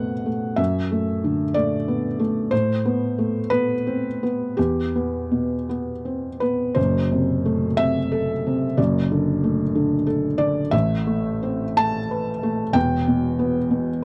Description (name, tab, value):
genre	neoclassical minimalist piano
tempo	54-63 BPM (dotted quarters)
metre	6/8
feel	rubato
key	unclear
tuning	A4 = 440 Hz
part	felt-muted upright piano	solo	0.0-14.0 s	E1 to A5	-22 LUFS	equal	none
room	light reverb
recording	dry, close 1970s-style studio recording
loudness	-22 LUFS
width	mono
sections	0.0-6.8 A section; 6.8-14.0 B section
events	none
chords	0.0 F#dim; 0.6 D/F#; 2.5 Amadd9; 4.6 Em; 6.8 F#dim; 8.8 D/F#; 10.7 Amadd9; 12.8 Em